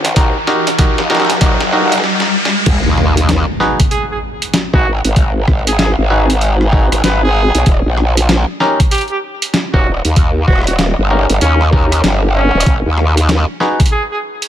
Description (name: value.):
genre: glitch hop.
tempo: 96 BPM.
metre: 4/4.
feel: swing 63% on 16ths.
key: unclear.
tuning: A4 = 440 Hz.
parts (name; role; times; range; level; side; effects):
growl bass; bass; 0.0-13.5 s; D#1 to D#2; -13 LUFS; equal; chorus, tube saturation, high-pass filter.
boom bap sampler-style drum kit; drums; 0.0-14.5 s; crash cymbal, hi-hat, rim click, snare drum; -18 LUFS; equal; high-pass filter on snare, high-pass filter on hats, high-pass filter on cymbals.
riser and impact; sound effects; 0.0-5.2 s; none; -18 LUFS; equal; none.
overdriven clav; stabs; 0.2-13.8 s; C#4 to B4; -18 LUFS; left 1 dB; vintage 12-bit sampler grit, sidechain pumping, ping-pong delay.
electronic kick drum; drums; 0.2-13.9 s; none; -12 LUFS; equal; none.
warm trumpet; melody; 3.9-14.2 s; C#4 to B4; -20 LUFS; right 1 dB; ping-pong delay.
room: light reverb, digital ambience.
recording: none.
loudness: -11 LUFS.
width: side -11 dB against mid.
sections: 0.0-2.7 A section; 2.7-14.5 B section.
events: build-up 0.0-2.7; drum fill 0.0-2.0, 2.0-2.7; riser 0.0-2.7; drop 2.7-14.5; impact 2.7-5.2.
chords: 0.0 D#; 2.7 G#m7; 7.7 D#7; 12.7 G#5.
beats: | 0.16 0.79 1.41 2.04 | 2.66 3.29 3.91 4.54 | 5.16 5.79 6.41 7.04 | 7.66 8.29 8.91 9.54 | 10.16 10.79 11.41 12.04 | 12.66 13.29 13.91.